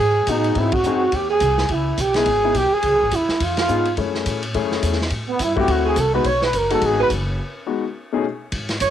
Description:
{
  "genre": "jazz, small-group swing and bop",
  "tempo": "211 BPM",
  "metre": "4/4",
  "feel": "swing 60% on 8ths",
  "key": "unclear",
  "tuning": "A4 = 440 Hz",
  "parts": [
    { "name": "breathy trumpet", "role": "melody", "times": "0.0-8.9 s", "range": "B3 to C#5", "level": "-21 LUFS", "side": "left 1 dB", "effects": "cassette tape" },
    { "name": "clear alto saxophone", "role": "second line", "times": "0.0-8.9 s", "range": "B3 to C#5", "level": "-22 LUFS", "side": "right 9 dB", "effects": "cassette tape" },
    { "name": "upright bass", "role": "bass", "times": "0.0-8.9 s", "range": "F#1 to A2", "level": "-25 LUFS", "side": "equal", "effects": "none" },
    { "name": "clear concert grand piano", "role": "accompaniment", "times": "0.3-8.2 s", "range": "B2 to G#4", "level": "-23 LUFS", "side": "left 8 dB", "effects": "cassette tape" },
    { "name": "vintage drum kit", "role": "drums", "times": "0.3-8.9 s", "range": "hi-hat, kick drum, ride cymbal, snare drum", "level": "-27 LUFS", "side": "equal", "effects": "cassette tape" }
  ],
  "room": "light reverb, small room ambience",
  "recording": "home recording on cassette",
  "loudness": "-17 LUFS",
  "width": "side -10 dB against mid",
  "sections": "0.0-8.5 A section",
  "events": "band accent 0.7, 3.6; break 7.4-8.5",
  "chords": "0.0 Emaj7 (rootless); 0.6 G#7; 1.7 C#m7; 2.8 C#7 (rootless); 4.0 F#m7; 5.1 Am7; 5.7 D9; 6.3 B6/F#; 8.0 B13",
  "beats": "0.28 | 0.56 0.85 1.13 1.42 | 1.70 1.99 2.27 2.56 | 2.84 3.13 3.41 3.70 | 3.98 4.27 4.55 4.83 | 5.12 5.40 5.69 5.97 | 6.26 6.54 6.83 7.11 | 7.40 7.68 7.96 8.25 | 8.53 8.82"
}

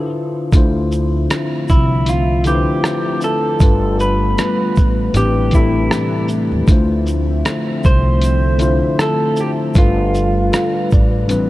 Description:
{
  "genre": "lo-fi hip hop",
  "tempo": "78 BPM",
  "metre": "4/4",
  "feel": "swing 56% on 16ths",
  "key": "D dorian",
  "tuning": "A4 = 440 Hz",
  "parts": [
    { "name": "electric guitar through a small old amp", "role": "melody", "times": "0.0-10.9 s", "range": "E4 to C5", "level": "-21 LUFS", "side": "right 1 dB", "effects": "low-pass filter" },
    { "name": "mellow tine electric piano", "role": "accompaniment", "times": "0.0-11.5 s", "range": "A2 to D5", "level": "-20 LUFS", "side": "left 2 dB", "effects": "low-pass filter" },
    { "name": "dark analog pad", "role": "sustained chords", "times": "0.5-11.5 s", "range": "C3 to E5", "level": "-23 LUFS", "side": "equal", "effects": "chorus, low-pass filter" },
    { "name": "upright bass", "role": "bass", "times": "0.5-11.5 s", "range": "G1 to Eb2", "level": "-18 LUFS", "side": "equal", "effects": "none" },
    { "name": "lo-fi sampler-style drum kit", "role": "drums", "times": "0.5-11.5 s", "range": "hi-hat, kick drum, rim click, shaker", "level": "-15 LUFS", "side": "equal", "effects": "none" },
    { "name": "tube shaker", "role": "percussion", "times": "0.5-11.5 s", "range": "none", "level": "-44 LUFS", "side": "right 4 dB", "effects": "none" }
  ],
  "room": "light reverb, digital ambience",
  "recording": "cassette tape",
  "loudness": "-13 LUFS",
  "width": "side -17 dB against mid",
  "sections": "0.5-11.5 A section",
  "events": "break 0.0-0.5",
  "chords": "0.0 Dm7; 0.5 Dm9; 3.6 G9; 5.1 Am11; 6.7 Dm9; 9.8 G9",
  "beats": "| 0.53 1.30 2.07 2.84 | 3.60 4.37 5.14 5.91 | 6.68 7.45 8.22 8.99 | 9.76 10.53 11.30"
}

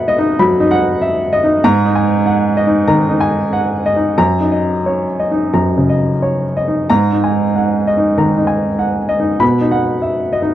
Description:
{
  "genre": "neoclassical minimalist piano",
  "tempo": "87-99 BPM",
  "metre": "4/4",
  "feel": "rubato",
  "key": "G# minor",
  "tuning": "A4 = 436 Hz",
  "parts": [
    { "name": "warm upright piano", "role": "solo", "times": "0.0-10.5 s", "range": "F#2 to B5", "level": "-12 LUFS", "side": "equal", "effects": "none" }
  ],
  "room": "little or no reverb",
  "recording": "dry, close 1970s-style studio recording",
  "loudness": "-12 LUFS",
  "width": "side -12 dB against mid",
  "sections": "0.0-10.5 A section",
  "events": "none",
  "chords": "0.0 B; 1.6 G#sus2; 4.2 D#m7/F#; 6.9 G#sus2; 9.4 B",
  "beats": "0.39 1.01 | 1.63 2.25 2.88 3.51 | 4.18 4.86 5.54 6.22 | 6.90 7.54 8.18 8.79 | 9.41 10.02"
}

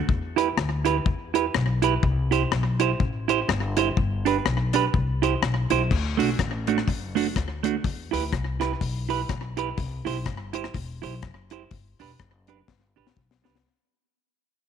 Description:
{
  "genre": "ska",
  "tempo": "124 BPM",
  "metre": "4/4",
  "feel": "swing 59% on 8ths",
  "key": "unclear",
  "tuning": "A4 = 439 Hz",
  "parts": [
    { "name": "upright bass", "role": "bass", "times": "0.1-13.6 s", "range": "E1 to E2", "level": "-27 LUFS", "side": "left 2 dB", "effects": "none" },
    { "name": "deep reggae drum kit", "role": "drums", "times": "0.1-13.6 s", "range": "crash cymbal, hi-hat, kick drum, rim click, snare drum", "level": "-28 LUFS", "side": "left 5 dB", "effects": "slapback echo" },
    { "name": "clean electric guitar", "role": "accompaniment", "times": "0.4-13.6 s", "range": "A3 to C5", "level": "-25 LUFS", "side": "right 10 dB", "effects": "slapback echo" }
  ],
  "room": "light reverb, small room ambience",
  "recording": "1960s-style stereo",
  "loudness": "-22 LUFS",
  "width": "side -8 dB against mid",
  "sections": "0.0-5.9 A section; 5.9-13.6 B section",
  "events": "fade-out 5.9-13.6; drum fill 12.7-13.6",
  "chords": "0.1 Em; 2.0 C; 4.0 G; 4.9 C; 5.9 D; 7.8 Em; 9.8 C; 11.7 G",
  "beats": "| 0.09 0.57 1.06 1.54 | 2.03 2.51 3.00 3.48 | 3.97 4.45 4.94 5.42 | 5.91 6.39 6.88 7.36 | 7.84 8.33 8.81 9.30 | 9.78 10.26 10.75 11.23 | 11.71 12.20 12.68 13.17"
}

